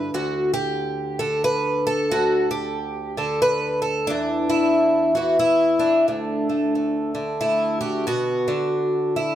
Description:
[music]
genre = folk, solo fingerstyle acoustic guitar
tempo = 90 BPM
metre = 3/4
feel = swing 61% on 8ths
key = unclear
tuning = A4 = 440 Hz
[part]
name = picked twelve-string acoustic guitar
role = solo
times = 0.0-9.3 s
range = D2 to B4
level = -19 LUFS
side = equal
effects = none
[sound]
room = light reverb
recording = none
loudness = -19 LUFS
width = side -11 dB against mid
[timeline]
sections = 0.0-8.1 A section; 8.1-9.3 B section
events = none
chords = 0.1 N.C.; 6.1 D5; 8.1 Bm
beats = | 0.12 0.79 1.45 | 2.11 2.77 3.43 | 4.09 4.75 5.42 | 6.08 6.74 7.41 | 8.07 8.73

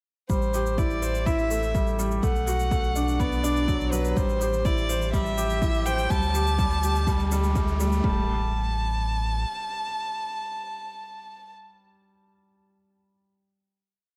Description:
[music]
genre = piano and strings electronica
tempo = 124 BPM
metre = 4/4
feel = straight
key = unclear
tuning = A4 = 440 Hz
[part]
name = dark violin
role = melody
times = 0.3-11.5 s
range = B4 to A5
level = -32 LUFS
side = equal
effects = none
[part]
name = felt-muted upright piano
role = riff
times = 0.3-14.2 s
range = F#3 to C5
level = -31 LUFS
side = equal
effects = none
[part]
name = warm sub bass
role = bass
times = 0.3-9.5 s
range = A1 to D2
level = -30 LUFS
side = equal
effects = sidechain pumping
[part]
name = electronic kick drum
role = drums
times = 0.3-8.1 s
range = none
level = -29 LUFS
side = equal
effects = overdrive
[part]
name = shaker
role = drums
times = 0.3-8.0 s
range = none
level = -42 LUFS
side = equal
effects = overdrive
[part]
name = riser and impact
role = sound effects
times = 2.9-11.6 s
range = none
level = -40 LUFS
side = equal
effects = none
[sound]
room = light reverb, digital ambience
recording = none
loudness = -25 LUFS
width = mono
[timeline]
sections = 0.3-8.0 build; 8.0-11.9 final chord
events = build-up 0.3-8.0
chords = 0.3 Am7; 2.2 Bm7; 4.2 Am7; 6.1 Dsus4; 8.0 Gsus2/A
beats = | 0.30 0.78 1.26 1.75 | 2.23 2.72 3.20 3.68 | 4.17 4.65 5.13 5.62 | 6.10 6.59 7.07 7.55 | 8.04 8.52 9.01 9.49 | 9.97 10.46 10.94 11.43

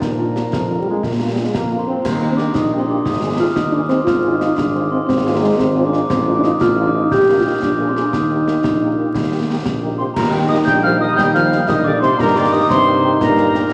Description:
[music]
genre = military-style march for wind band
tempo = 118 BPM (dotted quarters)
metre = 6/8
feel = straight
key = Eb major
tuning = A4 = 439 Hz
[part]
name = dark cornet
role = melody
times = 0.0-13.7 s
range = G4 to G5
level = -27 LUFS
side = equal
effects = none
[part]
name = clear trombone section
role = sustained chords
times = 0.0-2.0, 10.2-13.7 s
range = Eb3 to Eb4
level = -24 LUFS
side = equal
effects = none
[part]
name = mellow tuba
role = bass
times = 0.0-13.7 s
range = Ab1 to Bb2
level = -24 LUFS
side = equal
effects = none
[part]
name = concert snare drum, concert bass drum and clash cymbals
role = drums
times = 0.0-13.7 s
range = none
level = -26 LUFS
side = equal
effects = none
[part]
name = dark French horn section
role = accompaniment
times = 0.2-13.6 s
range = F3 to Ab4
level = -29 LUFS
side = equal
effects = none
[part]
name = dark euphonium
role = second line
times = 1.5-13.7 s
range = G2 to G4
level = -21 LUFS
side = equal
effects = none
[part]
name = glockenspiel with rubber mallets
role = second line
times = 1.5-13.7 s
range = G5 to G6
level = -25 LUFS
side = equal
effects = none
[part]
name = mellow piccolo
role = second line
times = 10.0-13.7 s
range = G5 to G6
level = -21 LUFS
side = equal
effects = none
[sound]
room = wet scoring stage reverb, RT60 2.0 s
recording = vinyl crackle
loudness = -16 LUFS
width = mono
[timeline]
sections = 0.0-2.0 A section; 2.0-10.2 A section; 10.2-13.7 B section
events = none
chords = 0.0 Bb; 2.0 Eb; 3.1 Ab; 4.1 Fm/Ab; 6.1 F7/A; 7.1 Eb/Bb; 7.6 Bb7; 8.1 Eb; 12.2 Eb/G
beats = | 0.01 0.52 | 1.03 1.53 | 2.04 2.55 | 3.06 3.56 | 4.07 4.58 | 5.09 5.59 | 6.10 6.61 | 7.12 7.63 | 8.13 8.64 | 9.15 9.66 | 10.16 10.67 | 11.18 11.69 | 12.19 12.70 | 13.21 13.71

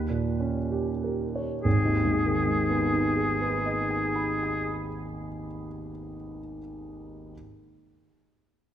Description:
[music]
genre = classical, romantic duo for oboe and grand piano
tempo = 34 BPM (dotted quarters)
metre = 6/8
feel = rubato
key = G# minor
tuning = A4 = 440 Hz
[part]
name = warm grand piano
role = accompaniment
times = 0.0-7.3 s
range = G#1 to D#6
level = -27 LUFS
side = right 1 dB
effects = none
[part]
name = warm oboe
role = melody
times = 1.6-4.8 s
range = G#4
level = -29 LUFS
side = left 2 dB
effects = none
[sound]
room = wet scoring stage reverb, RT60 2.1 s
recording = minimal, uncompressed stereo recording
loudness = -25 LUFS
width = side -10 dB against mid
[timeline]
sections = 0.0-1.6 A section; 1.6-5.1 B section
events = slowing down 0.0-1.6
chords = 0.0 D#7; 1.6 G#m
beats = | 1.65 3.40

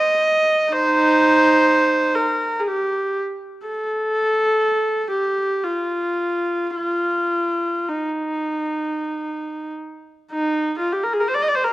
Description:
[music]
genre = classical, free, expressive piece for unaccompanied viola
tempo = 40-64 BPM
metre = 3/4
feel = rubato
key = unclear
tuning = A4 = 438 Hz
[part]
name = rich viola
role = solo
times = 0.0-11.7 s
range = Eb4 to Eb5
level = -18 LUFS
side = equal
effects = none
[sound]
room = moderate recital hall reverb, RT60 1.6 s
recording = worn, warbling old tape, cassette tape, warbly pitch drift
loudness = -18 LUFS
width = side -16 dB against mid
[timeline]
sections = 0.0-10.3 A section; 10.3-11.7 A section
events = none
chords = none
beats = | 0.72 1.68 2.66 | 3.66 4.61 5.64 | 6.75 7.89 9.03 | 10.31 11.31

